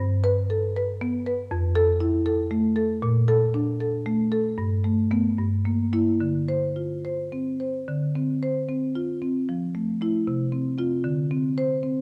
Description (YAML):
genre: classical, contemporary piece for solo marimba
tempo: 70-81 BPM (dotted quarters)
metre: 6/8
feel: rubato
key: D minor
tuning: A4 = 440 Hz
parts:
  - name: marimba with soft mallets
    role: solo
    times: 0.0-12.0 s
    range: F2 to C5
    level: -25 LUFS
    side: equal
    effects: none
room: moderate recital hall reverb, RT60 1.6 s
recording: close, detailed microphones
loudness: -25 LUFS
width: mono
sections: 0.0-7.9 A section; 7.9-12.0 B section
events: none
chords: 0.0 Gadd9; 1.5 Fmaj7; 3.0 Bbmaj7; 4.6 Gadd9; 5.4 Gm6; 6.2 Dm7; 9.5 Fmaj7; 10.3 Csus4; 11.0 D7(no3)